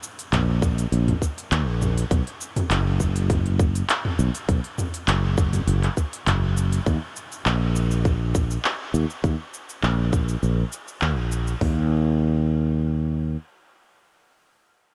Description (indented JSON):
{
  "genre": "organic downtempo",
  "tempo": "101 BPM",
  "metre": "4/4",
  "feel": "straight",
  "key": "Eb minor",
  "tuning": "A4 = 442 Hz",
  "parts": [
    { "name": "organic electronic drum kit", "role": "drums", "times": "0.0-11.6 s", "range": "cabasa, handclaps, hi-hat, toms", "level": "-30 LUFS", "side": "equal", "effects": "none" },
    { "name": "fretless electric bass", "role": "bass", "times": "0.3-13.4 s", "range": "F#1 to Eb2", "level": "-24 LUFS", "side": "equal", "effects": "sidechain pumping" },
    { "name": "organic electronic drum kit", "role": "drums", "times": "0.6-11.8 s", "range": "hi-hat, kick drum, toms", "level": "-24 LUFS", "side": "equal", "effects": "none" }
  ],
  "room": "light reverb",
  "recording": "none",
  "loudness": "-23 LUFS",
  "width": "mono",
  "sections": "0.0-6.9 A section; 6.9-11.6 B section; 11.6-14.0 C section",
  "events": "none",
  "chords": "none"
}